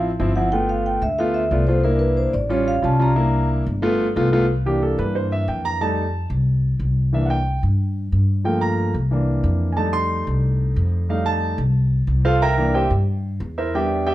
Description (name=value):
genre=Afro-Cuban jazz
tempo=182 BPM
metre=4/4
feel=straight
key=C mixolydian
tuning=A4 = 438 Hz
part: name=warm concert grand piano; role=accompaniment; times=0.0-14.1 s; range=E3 to C6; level=-21 LUFS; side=right 1 dB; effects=none
part: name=upright bass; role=bass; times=0.0-14.1 s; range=G1 to G2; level=-20 LUFS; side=equal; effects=none
part: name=vibraphone with soft mallets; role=melody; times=0.4-3.5 s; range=Bb4 to Bb5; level=-22 LUFS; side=equal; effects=none
room=light reverb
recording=dark, warm production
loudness=-18 LUFS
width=side -15 dB against mid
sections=0.0-4.5 A section; 4.5-14.1 A section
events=vibraphone solo 0.0-4.5; grand piano solo 4.5-14.1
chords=0.0 Dm7 (rootless); 0.5 G7; 1.8 C7; 2.5 A7alt; 3.2 C7; 3.8 G7; 4.5 C7; 5.8 F7; 7.1 C7; 8.5 Gm7; 9.1 C7; 9.8 F7; 12.4 C7